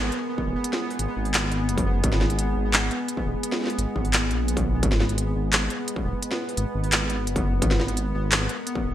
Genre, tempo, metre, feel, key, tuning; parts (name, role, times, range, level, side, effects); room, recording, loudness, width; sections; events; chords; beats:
half-time drum and bass; 172 BPM; 4/4; half-time; G# minor; A4 = 439 Hz
deep dark ambient pad; sustained chords; 0.0-8.9 s; G#3 to B4; -30 LUFS; right 1 dB; chorus, built-in reverb, sidechain pumping
dark detuned saw bass; bass; 0.0-8.9 s; D#1 to A#1; -26 LUFS; equal
pulsing gated texture; texture; 0.0-8.9 s; B3; -34 LUFS; left 2 dB; chorus, built-in reverb
industrial drum kit; drums; 0.1-8.7 s; handclaps, hi-hat, snare drum; -25 LUFS; equal; gated reverb
electronic kick drum; drums; 0.4-8.8 s; -25 LUFS; equal; distortion
moderate lush hall reverb, RT60 1.8 s, digital ambience; bright 1980s-style digital production; -22 LUFS; side -12 dB against mid
0.0-8.9 A section
0.0 G#madd9
0.29 | 0.64 0.99 1.34 1.69 | 2.04 2.39 2.74 3.09 | 3.43 3.78 4.13 4.48 | 4.83 5.18 5.53 5.88 | 6.22 6.57 6.92 7.27 | 7.62 7.97 8.32 8.67